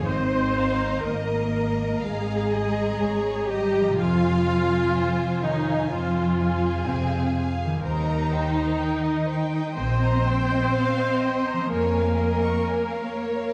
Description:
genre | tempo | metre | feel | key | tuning
cinematic, emotional film score for orchestra | 62 BPM | 4/4 | rubato | Eb mixolydian | A4 = 440 Hz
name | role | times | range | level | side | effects
rich studio violin section | melody | 0.0-13.5 s | Ab4 to G5 | -40 LUFS | equal | none
warm studio violin section | second line | 0.0-13.5 s | C5 to Db6 | -36 LUFS | equal | none
rich studio viola section | accompaniment | 0.0-13.5 s | C4 to C5 | -28 LUFS | equal | none
concert harp | arpeggios | 0.0-13.5 s | Ab2 to Bb4 | -35 LUFS | equal | none
warm studio cello section | bass | 0.0-13.5 s | C3 to C4 | -30 LUFS | equal | none
clear studio double bass section | bass | 0.1-12.5 s | Ab1 to F2 | -30 LUFS | equal | none
room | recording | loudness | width
moderate scoring stage reverb, RT60 1.5 s | dark, warm production, vinyl crackle | -24 LUFS | mono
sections
0.0-13.5 A section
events
none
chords
0.1 Absus2; 4.0 Fm; 7.8 Eb6; 11.7 Db/F

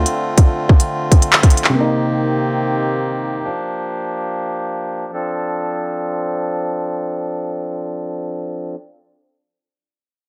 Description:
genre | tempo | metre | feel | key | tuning
hip hop, drill | 142 BPM | 4/4 | half-time | D phrygian | A4 = 440 Hz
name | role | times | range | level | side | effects
felt-muted upright piano | accompaniment | 0.0-3.5 s | C3 to F4 | -23 LUFS | equal | low-pass filter
accordion | sustained chords | 0.0-8.8 s | D3 to A4 | -24 LUFS | equal | low-pass filter
drill drum kit | drums | 0.1-1.7 s | handclaps, hi-hat, kick drum | -12 LUFS | equal | none
room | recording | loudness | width
light reverb, studio reverb | none | -18 LUFS | mono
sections
0.0-5.1 A section; 5.1-8.5 B section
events
filter sweep 0.0-5.1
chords
0.0 Dm7; 1.8 Cm7; 3.4 Gm7; 5.1 Dm7

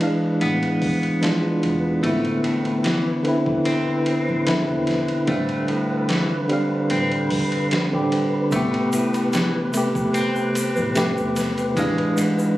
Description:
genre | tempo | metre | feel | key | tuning
trip hop | 74 BPM | 4/4 | straight | A minor | A4 = 440 Hz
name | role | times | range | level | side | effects
bright tine electric piano | accompaniment | 0.0-12.6 s | C3 to F5 | -21 LUFS | equal | tremolo, tape echo
trip hop sampler-style drum kit | drums | 0.0-12.4 s | hi-hat, kick drum, ride cymbal, snare drum | -29 LUFS | equal | overdrive
wind-like tuned noise texture | texture | 0.0-12.6 s | B4 | -31 LUFS | equal | built-in reverb
clean electric guitar | arpeggios | 0.4-12.5 s | G#2 to C4 | -27 LUFS | left 1 dB | tape echo
upright bass | bass | 0.4-12.0 s | E1 to A1 | -30 LUFS | equal | none
tube shaker | percussion | 8.5-12.5 s | none | -36 LUFS | left 1 dB | none
room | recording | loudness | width
light reverb, digital ambience | recorded on a phone in the room, club reverb, compression | -19 LUFS | side -15 dB against mid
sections
0.0-12.6 A section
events
none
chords
0.0 E7b9/A; 2.0 Cmaj9/A; 5.3 G7sus4/A; 8.5 Am9; 11.8 E7b9/A

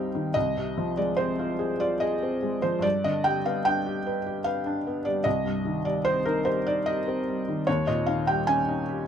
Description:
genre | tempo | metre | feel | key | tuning
classical, romantic nocturne for solo piano | 74 BPM | 3/4 | rubato | C minor | A4 = 438 Hz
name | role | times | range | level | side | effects
felt-muted upright piano | solo | 0.0-9.1 s | C2 to Ab5 | -24 LUFS | equal | none
room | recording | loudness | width
light reverb | close, detailed microphones | -24 LUFS | side -8 dB against mid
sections
0.0-9.1 A section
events
none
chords
0.4 Fm/C; 2.8 G; 5.3 Cm; 7.7 Eb7

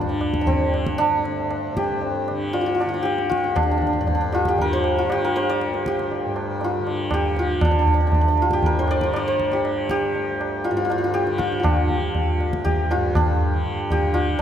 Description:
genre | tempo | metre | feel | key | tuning
indian classical, Hindustani | 118 BPM | 4/4 | straight | D raga malkauns | A4 = 445 Hz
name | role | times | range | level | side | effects
santur | melody | 0.0-14.4 s | C4 to D5 | -22 LUFS | equal | none
tanpura | drone | 0.0-14.4 s | D2 to D3 | -28 LUFS | equal | none
tabla | percussion | 0.2-14.4 s | none | -24 LUFS | equal | none
room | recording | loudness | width
wet scoring stage reverb, RT60 2.1 s | none | -19 LUFS | side -9 dB against mid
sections
0.0-14.4 A section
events
speeding up 0.0-14.4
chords
none

